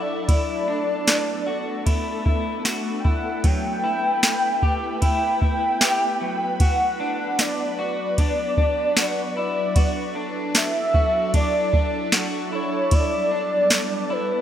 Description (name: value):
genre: dream pop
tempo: 76 BPM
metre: 4/4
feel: straight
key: B minor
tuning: A4 = 441 Hz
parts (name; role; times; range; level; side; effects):
- warm velvety synth lead; melody; 0.0-14.4 s; B4 to G5; -23 LUFS; equal; chorus, digital delay
- ethereal airy pad; sustained chords; 0.0-14.4 s; F#3 to B4; -29 LUFS; right 1 dB; ensemble chorus, built-in reverb
- electric guitar through a small old amp; arpeggios; 0.0-14.4 s; F#3 to G4; -29 LUFS; left 2 dB; lush chorus, digital delay
- soft vintage rhythm box; drums; 0.3-13.9 s; kick drum, ride cymbal, snare drum, tambourine; -20 LUFS; equal; none
- bluegrass banjo; texture; 1.1-12.3 s; B4 to E5; -40 LUFS; right 1 dB; none
room: wet lush hall reverb, RT60 2.2 s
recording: rough home demo mix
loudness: -19 LUFS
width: side -10 dB against mid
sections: 0.0-14.4 A section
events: none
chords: 0.3 Asus4; 3.4 Em; 6.6 Bm; 9.8 Dadd9; 12.9 Gadd9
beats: | 0.29 1.08 1.87 2.65 | 3.44 4.23 5.02 5.81 | 6.60 7.39 8.18 8.97 | 9.76 10.55 11.34 12.13 | 12.92 13.71